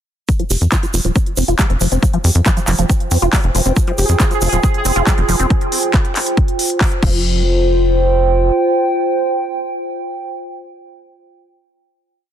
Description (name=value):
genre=psychedelic trance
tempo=138 BPM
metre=4/4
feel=straight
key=F minor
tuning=A4 = 441 Hz
part: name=liquid acid bass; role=riff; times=0.3-7.4 s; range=F3 to G4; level=-21 LUFS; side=equal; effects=phaser, auto-pan, sidechain pumping, digital delay
part: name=electronic kick drum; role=drums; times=0.3-7.1 s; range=none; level=-15 LUFS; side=equal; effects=overdrive
part: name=techno drum kit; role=drums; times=0.3-7.1 s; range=crash cymbal, handclaps, hi-hat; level=-21 LUFS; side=equal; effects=overdrive
part: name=egg shaker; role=percussion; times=0.3-5.5 s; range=none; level=-26 LUFS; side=right 5 dB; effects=none
part: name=warbly tape-like pad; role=texture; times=2.4-11.4 s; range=F4 to G5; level=-19 LUFS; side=right 2 dB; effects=chorus, built-in reverb, sidechain pumping
part: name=tight sequencer bass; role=bass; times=0.5-8.5 s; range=Eb1 to F2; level=-16 LUFS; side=equal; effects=tube saturation
part: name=pulsing gated texture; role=sustained chords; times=3.8-5.5 s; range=Ab4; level=-23 LUFS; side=right 3 dB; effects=chorus, built-in reverb, sidechain pumping
room=light reverb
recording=dense, heavily limited modern master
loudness=-13 LUFS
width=side -10 dB against mid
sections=0.3-7.2 groove; 7.2-10.7 final note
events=fade-in on ambient pad 0.3-7.2; filter sweep on acid bass 0.3-5.5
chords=0.3 F5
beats=| 0.29 0.72 1.16 1.59 | 2.03 2.46 2.90 3.33 | 3.77 4.20 4.63 5.07 | 5.50 5.94 6.37 6.81 | 7.24 7.68 8.11 8.55 | 8.98 9.42 9.85 10.29